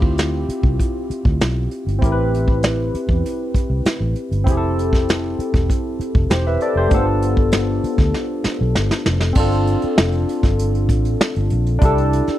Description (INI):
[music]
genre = lush 1970s-style soul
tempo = 98 BPM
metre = 4/4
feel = straight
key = unclear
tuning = A4 = 440 Hz
[part]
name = barky tine electric piano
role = accompaniment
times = 0.0-12.4 s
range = A3 to E5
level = -21 LUFS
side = left 1 dB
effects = overdrive, analog chorus
[part]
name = vintage muted fingered electric bass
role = bass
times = 0.0-12.3 s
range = E1 to E2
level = -20 LUFS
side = equal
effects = none
[part]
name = vintage brush drum kit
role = drums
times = 0.0-12.4 s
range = crash cymbal, hi-hat, kick drum, snare drum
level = -18 LUFS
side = equal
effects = none
[sound]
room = little or no reverb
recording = dry, close 1970s-style studio recording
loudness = -16 LUFS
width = side -13 dB against mid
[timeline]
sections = 0.0-9.4 A section; 9.4-12.4 B section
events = drum fill 8.1-9.4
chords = 0.0 Dm11; 2.0 Am9; 4.5 Fmaj7; 6.9 G7; 9.4 G7sus4; 11.8 C69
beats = 0.17 0.78 1.40 | 2.01 2.62 3.24 3.85 | 4.46 5.07 5.69 6.30 | 6.91 7.52 8.14 8.75 | 9.36 9.97 10.59 11.20 | 11.81